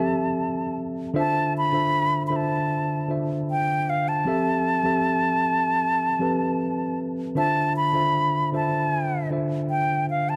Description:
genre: soul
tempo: 77 BPM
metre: 4/4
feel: straight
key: D dorian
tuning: A4 = 440 Hz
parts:
  - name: concert flute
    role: melody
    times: 0.0-10.4 s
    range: F5 to B5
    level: -26 LUFS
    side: equal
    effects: none
  - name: mellow tine electric piano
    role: accompaniment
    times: 0.0-10.4 s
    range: D3 to E5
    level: -27 LUFS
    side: equal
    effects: none
room: moderate plate reverb, RT60 3.5 s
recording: none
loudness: -24 LUFS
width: mono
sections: 0.0-10.4 A section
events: none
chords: 0.0 Fmaj7; 1.2 Dm7; 4.3 Fmaj7; 7.4 Dm7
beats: 0.38 | 1.16 1.93 2.71 3.48 | 4.26 5.04 5.82 6.59 | 7.37 8.14 8.92 9.70

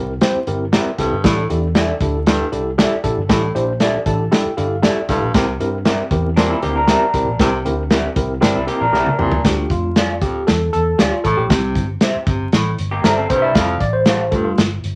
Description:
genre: uptempo 1960s-style soul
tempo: 117 BPM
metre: 4/4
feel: straight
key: unclear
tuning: A4 = 439 Hz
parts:
  - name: mellow tine electric piano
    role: accompaniment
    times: 0.0-14.7 s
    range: G3 to A5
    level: -23 LUFS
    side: equal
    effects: overdrive
  - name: vintage muted fingered electric bass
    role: bass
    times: 0.0-15.0 s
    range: F1 to C3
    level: -25 LUFS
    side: equal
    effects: none
  - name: natural country drum kit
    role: drums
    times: 0.2-15.0 s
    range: hi-hat, kick drum, snare drum, toms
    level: -20 LUFS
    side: equal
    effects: none
  - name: electric guitar through a small old amp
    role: stabs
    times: 0.7-14.2 s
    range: G4 to F5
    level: -24 LUFS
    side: equal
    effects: none
  - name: clear baritone saxophone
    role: riff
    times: 1.0-14.5 s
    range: D2 to C3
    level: -25 LUFS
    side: equal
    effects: none
  - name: electric guitar through a small old amp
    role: riff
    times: 6.4-9.5, 12.9-13.7 s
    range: G3 to Bb4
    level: -22 LUFS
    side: equal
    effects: spring reverb
room: moderate studio ambience, RT60 0.5 s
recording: vinyl crackle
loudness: -17 LUFS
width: mono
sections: 0.0-9.5 A section; 9.5-15.0 B section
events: tine electric piano fill 3.8-5.3; drum fill 8.9-9.5; tine electric piano solo 9.5-15.0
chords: 0.0 C7; 9.5 Dm; 11.5 C; 13.6 Fadd9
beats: 0.22 0.73 | 1.24 1.76 2.27 2.78 | 3.30 3.81 4.32 4.84 | 5.35 5.86 6.37 6.89 | 7.40 7.91 8.43 8.94 | 9.45 9.96 10.48 10.99 | 11.50 12.02 12.53 13.04 | 13.56 14.07 14.58

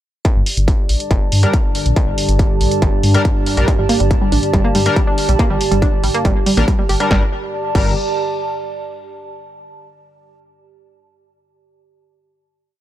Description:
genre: driving peak-time techno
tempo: 140 BPM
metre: 4/4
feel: straight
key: G minor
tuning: A4 = 440 Hz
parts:
  - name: electronic kick drum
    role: drums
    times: 0.2-7.8 s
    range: none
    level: -16 LUFS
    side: equal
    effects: distortion, overdrive
  - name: punchy analog drum machine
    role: drums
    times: 0.2-7.8 s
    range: crash cymbal, hi-hat, snare drum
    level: -24 LUFS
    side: equal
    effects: sidechain pumping on hats, sidechain pumping on cymbals
  - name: warbly tape-like pad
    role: texture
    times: 0.8-8.8 s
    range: G4 to A5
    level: -22 LUFS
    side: right 3 dB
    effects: chorus, built-in reverb, sidechain pumping
  - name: analog drone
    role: drone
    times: 1.0-7.2 s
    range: G2 to D3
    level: -25 LUFS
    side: left 1 dB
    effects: chorus, sidechain pumping
  - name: dark detuned saw bass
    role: bass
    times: 0.4-8.0 s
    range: G1 to G2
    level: -16 LUFS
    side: equal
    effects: transformer saturation, sidechain pumping
  - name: sync-sweep polysynth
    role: stabs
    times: 1.4-7.9 s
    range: G3 to Bb4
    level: -23 LUFS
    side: left 3 dB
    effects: lush chorus, cassette tape, sidechain pumping, tape echo
  - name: analog pluck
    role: riff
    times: 3.8-8.0 s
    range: G3 to G4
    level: -20 LUFS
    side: right 2 dB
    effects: chorus, tube saturation, sidechain pumping, analog delay
room: digital ambience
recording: dry, gritty hardware recording, transformer saturation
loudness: -13 LUFS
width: side -12 dB against mid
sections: 0.2-7.1 groove; 7.1-8.8 final chord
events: none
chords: 0.2 Gm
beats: | 0.25 0.68 1.11 1.54 | 1.96 2.39 2.82 3.25 | 3.68 4.11 4.54 4.96 | 5.39 5.82 6.25 6.68 | 7.11 7.54 7.96 8.39

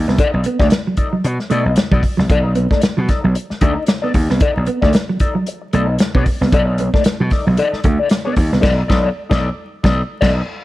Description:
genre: funk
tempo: 114 BPM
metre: 4/4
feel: swing 56% on 16ths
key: unclear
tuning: A4 = 442 Hz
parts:
  - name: gritty slap bass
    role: bass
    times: 0.0-10.4 s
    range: B1 to B2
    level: -17 LUFS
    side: equal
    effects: overdrive
  - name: mellow electric guitar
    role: accompaniment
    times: 0.1-10.4 s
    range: D#4 to D5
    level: -21 LUFS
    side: left 4 dB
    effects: wah
  - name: mellow electric guitar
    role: riff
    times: 0.1-8.6 s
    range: F#3 to B3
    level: -22 LUFS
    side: right 3 dB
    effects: tremolo
  - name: warm soul drum kit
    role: drums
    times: 0.1-10.4 s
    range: crash cymbal, hi-hat, kick drum, snare drum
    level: -16 LUFS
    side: equal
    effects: none
room: light reverb, studio ambience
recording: dark, warm production, vinyl crackle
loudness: -14 LUFS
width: side -16 dB against mid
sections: 0.0-10.6 A section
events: band accent 8.6-10.6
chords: 0.0 B7#9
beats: | 0.19 0.71 1.24 1.77 | 2.30 2.83 3.36 3.88 | 4.41 4.94 5.47 6.00 | 6.52 7.05 7.58 8.11 | 8.64 9.16 9.69 10.22

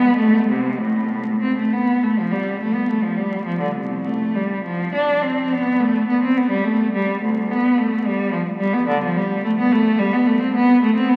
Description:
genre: classical, baroque-style suite movement for unaccompanied cello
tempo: 94-111 BPM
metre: 3/4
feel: rubato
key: unclear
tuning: A4 = 440 Hz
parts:
  - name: rich cello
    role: solo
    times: 0.0-11.2 s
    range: C2 to D4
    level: -19 LUFS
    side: equal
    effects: none
room: wet cathedral reverb, RT60 5.4 s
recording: very old 78 rpm record, vinyl crackle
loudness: -19 LUFS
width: mono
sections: 0.0-2.0 A section; 2.0-11.2 A section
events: none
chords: none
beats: | 0.17 0.79 1.41 | 2.04 2.61 3.17 | 3.76 4.36 4.94 | 5.52 6.08 6.65 | 7.22 7.78 8.32 | 8.90 9.47 10.01 | 10.56 11.11

